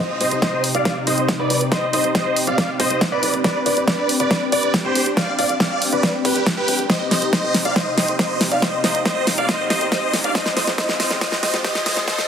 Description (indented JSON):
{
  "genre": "uplifting trance",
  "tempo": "139 BPM",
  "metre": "4/4",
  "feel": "straight",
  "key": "C harmonic minor",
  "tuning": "A4 = 438 Hz",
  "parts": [
    { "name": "big supersaw lead", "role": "melody", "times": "0.0-12.2 s", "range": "G4 to F5", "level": "-21 LUFS", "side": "right 1 dB", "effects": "phaser, sidechain pumping, low-pass filter, dub echo" },
    { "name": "dark baby grand piano", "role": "second line", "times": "0.0-12.2 s", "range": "B4 to F5", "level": "-26 LUFS", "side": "left 3 dB", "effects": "sidechain pumping, low-pass filter, dub echo" },
    { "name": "lush unison pad", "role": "sustained chords", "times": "0.0-12.3 s", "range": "C3 to G4", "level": "-26 LUFS", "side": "left 1 dB", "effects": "chorus, phaser, sidechain pumping" },
    { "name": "tight sequencer bass", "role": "bass", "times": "0.2-12.0 s", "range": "F1 to F2", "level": "-33 LUFS", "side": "equal", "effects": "none" },
    { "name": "big-room dance drum kit", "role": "drums", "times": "0.2-12.3 s", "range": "hi-hat, snare drum", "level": "-21 LUFS", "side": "equal", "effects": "studio reverb" },
    { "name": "electronic kick drum", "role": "drums", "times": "0.4-12.2 s", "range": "none", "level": "-24 LUFS", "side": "equal", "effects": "high-pass filter on kick, studio reverb" },
    { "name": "riser", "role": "sound effects", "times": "8.7-12.3 s", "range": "none", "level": "-33 LUFS", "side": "left 1 dB", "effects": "none" }
  ],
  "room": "moderate huge ambient reverb, RT60 4.5 s",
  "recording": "heavily compressed radio sound, high-pass filter",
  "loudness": "-17 LUFS",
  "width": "side -8 dB against mid",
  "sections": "0.0-12.3 A section",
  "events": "build-up 0.0-12.3; drum fill 0.0-12.3; filter sweep on supersaw synth 0.0-12.3",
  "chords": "0.0 Cm; 3.4 Gsus4; 6.9 Cm; 10.3 Fm"
}